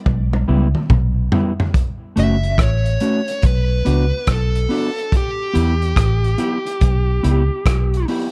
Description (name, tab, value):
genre	roots reggae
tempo	71 BPM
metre	4/4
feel	swing 65% on 16ths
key	E dorian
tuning	A4 = 440 Hz
part	vintage muted fingered electric bass	bass	0.1-8.0 s	F#1 to E2	-20 LUFS	equal	none
part	crunchy breakbeat drum kit	drums	0.1-8.3 s	hi-hat, kick drum, rim click, toms	-21 LUFS	equal	none
part	mellow electric guitar	accompaniment	0.5-8.3 s	G3 to G4	-24 LUFS	equal	vibrato effect, tape echo
part	dark smooth lead guitar	melody	2.2-8.1 s	G4 to E5	-26 LUFS	equal	overdrive, tape echo
room	light reverb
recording	dark, warm production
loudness	-18 LUFS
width	mono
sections	0.0-1.7 A section; 1.7-8.3 B section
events	drum fill 0.1-1.7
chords	0.0 Em; 1.7 F#m; 3.4 Bm; 5.1 Em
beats	0.06 0.90 | 1.75 2.59 3.43 4.28 | 5.12 5.97 6.81 7.66